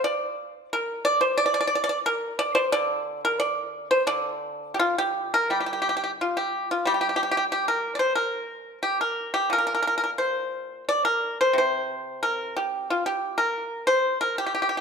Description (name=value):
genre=chinese traditional, Chinese solo plucked strings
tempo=89 BPM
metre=2/4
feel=rubato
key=D jue mode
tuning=A4 = 440 Hz
part: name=pipa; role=solo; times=0.0-14.8 s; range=Bb2 to D5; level=-23 LUFS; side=equal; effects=none
room=moderate recital hall reverb, RT60 1.5 s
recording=none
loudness=-23 LUFS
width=side -6 dB against mid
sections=0.0-5.5 A section; 5.5-14.8 B section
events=none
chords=none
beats=| 0.06 0.74 | 1.41 2.08 | 2.75 3.42 | 4.09 4.79 | 5.50 6.20 | 6.87 7.52 | 8.16 8.82 | 9.50 10.19 | 10.88 11.56 | 12.23 12.90 | 13.56 14.22